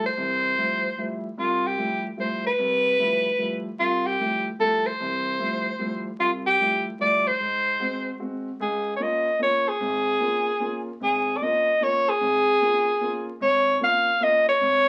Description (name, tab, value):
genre	jazz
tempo	150 BPM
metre	3/4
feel	swing 66% on 8ths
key	F lydian, Db major from 8.6 s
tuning	A4 = 441 Hz
part	clear soprano saxophone	melody	0.0-14.9 s	F4 to F5	-24 LUFS	equal	none
part	warm concert grand piano	accompaniment	0.0-14.9 s	Ab1 to Gb4	-34 LUFS	equal	none
room	wet small room reverb, RT60 0.5 s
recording	very old 78 rpm record, vinyl crackle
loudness	-24 LUFS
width	mono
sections	0.0-8.6 A section; 8.6-14.9 B section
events	none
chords	0.0 Fmaj9; 7.4 Ab7; 8.6 Db6